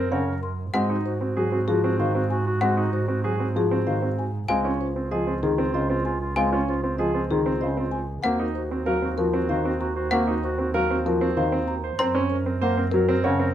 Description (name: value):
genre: classical, minimalist pattern music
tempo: 192 BPM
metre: 6/4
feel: straight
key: Db major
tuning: A4 = 440 Hz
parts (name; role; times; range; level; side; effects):
- warm clarinet; second line; 0.0-13.5 s; F4 to Bb4; -31 LUFS; right 2 dB; none
- clear concert grand piano; arpeggios; 0.0-13.5 s; C4 to Db5; -27 LUFS; right 3 dB; none
- rich double bass; bass; 0.0-13.5 s; Db2 to Ab2; -28 LUFS; right 2 dB; none
- marimba with soft mallets; melody; 0.1-13.4 s; Ab4 to C6; -29 LUFS; left 8 dB; none
- dark grand piano; accompaniment; 0.1-13.4 s; Db3 to C4; -26 LUFS; equal; none
- trough xylophone with plastic mallets; arpeggios; 0.7-12.2 s; Gb5 to C6; -29 LUFS; left 1 dB; none
room: light reverb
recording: none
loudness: -22 LUFS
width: side -11 dB against mid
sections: 0.0-13.5 A section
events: none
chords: 0.0 Gb; 0.7 Ab7; 4.5 Dbmaj7; 8.2 Ebmadd9; 12.0 Gb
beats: 0.12 0.43 | 0.74 1.05 1.37 1.68 1.99 2.30 | 2.62 2.93 3.24 3.55 3.87 4.18 | 4.49 4.80 5.12 5.43 5.74 6.05 | 6.37 6.68 6.99 7.30 7.62 7.93 | 8.24 8.55 8.87 9.18 9.49 9.80 | 10.12 10.43 10.74 11.05 11.37 11.68 | 11.99 12.30 12.62 12.93 13.24